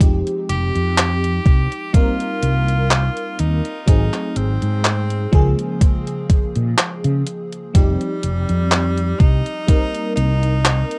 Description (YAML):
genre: vaporwave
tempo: 62 BPM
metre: 4/4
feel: swing 54% on 16ths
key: F minor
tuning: A4 = 440 Hz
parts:
  - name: FM electric piano with soft pad layer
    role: accompaniment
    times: 0.0-11.0 s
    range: Db3 to Bb4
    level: -27 LUFS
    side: equal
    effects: analog chorus, cassette tape, tape echo
  - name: mellow fretless electric bass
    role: bass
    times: 0.0-10.8 s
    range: F1 to Db3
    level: -21 LUFS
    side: equal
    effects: tube saturation, ensemble chorus
  - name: detuned 8-bit digital drum machine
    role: drums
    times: 0.0-11.0 s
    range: handclaps, hi-hat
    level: -22 LUFS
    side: equal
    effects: overdrive
  - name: electronic kick drum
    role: drums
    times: 0.0-9.9 s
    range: none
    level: -16 LUFS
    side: equal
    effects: overdrive
  - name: edgy tenor saxophone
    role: melody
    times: 0.5-11.0 s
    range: G3 to G4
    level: -29 LUFS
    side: equal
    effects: tape echo
room: little or no reverb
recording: rough home demo mix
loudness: -18 LUFS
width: mono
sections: 0.0-11.0 A section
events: none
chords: 0.0 Fm9; 1.9 Cm7; 3.9 Ab7b9; 5.3 Db6; 7.8 Fsus2; 9.7 Cm7